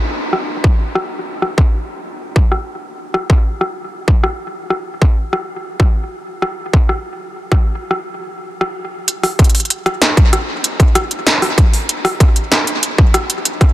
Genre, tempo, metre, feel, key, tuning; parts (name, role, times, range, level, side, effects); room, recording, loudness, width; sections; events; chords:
IDM; 96 BPM; 4/4; straight
industrial drum kit; drums; 0.3-13.7 s; hi-hat, rim click, snare drum; -18 LUFS; equal; overdrive, low-pass filter on hats, low-pass filter on snare, tape echo
electronic kick drum; drums; 0.6-13.7 s; -11 LUFS; equal; distortion, overdrive
light reverb, digital ambience; dense, heavily limited modern master; -13 LUFS; side -15 dB against mid
0.0-9.1 A section; 9.1-13.7 B section